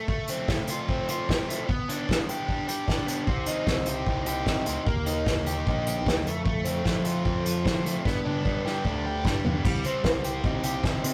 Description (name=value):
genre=indie rock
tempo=151 BPM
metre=4/4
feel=straight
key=C dorian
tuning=A4 = 440 Hz
part: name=overdriven electric guitar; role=riff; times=0.0-11.1 s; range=G3 to G4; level=-32 LUFS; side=equal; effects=none
part: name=unplugged drum kit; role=drums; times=0.1-11.1 s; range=crash cymbal, hi-hat, kick drum, snare drum, toms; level=-30 LUFS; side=equal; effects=none
part: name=overdriven picked electric bass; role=bass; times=3.3-11.1 s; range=Bb1 to F3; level=-33 LUFS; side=equal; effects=none
room=moderate small room reverb, RT60 0.5 s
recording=rough rehearsal-room recording, tube saturation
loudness=-27 LUFS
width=mono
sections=0.0-9.6 A section; 9.6-11.1 A section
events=drum fill 8.1-9.6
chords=0.0 F; 1.7 G; 3.3 Cm; 4.9 Eb; 6.3 F; 8.1 G; 9.6 Cm